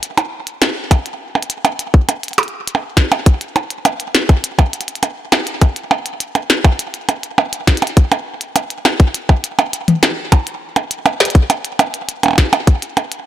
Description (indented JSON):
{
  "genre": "IDM",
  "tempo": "102 BPM",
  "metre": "4/4",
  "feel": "straight",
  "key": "none",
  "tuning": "none",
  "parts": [
    { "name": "glitchy drum kit", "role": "drums", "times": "0.0-13.2 s", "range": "hi-hat, percussion blips, snare drum, toms", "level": "-16 LUFS", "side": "right 2 dB", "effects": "tape echo" },
    { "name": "electronic kick drum", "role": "drums", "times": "0.9-12.8 s", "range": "none", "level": "-10 LUFS", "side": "left 1 dB", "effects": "none" }
  ],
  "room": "light reverb",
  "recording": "dry, gritty hardware recording",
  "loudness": "-13 LUFS",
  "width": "side -12 dB against mid",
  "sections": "0.0-13.3 A section",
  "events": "none",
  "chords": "none",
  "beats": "0.32 | 0.91 1.50 2.09 2.67 | 3.26 3.85 4.44 5.03 | 5.62 6.20 6.79 7.38 | 7.97 8.56 9.14 9.73 | 10.32 10.91 11.50 12.09 | 12.67"
}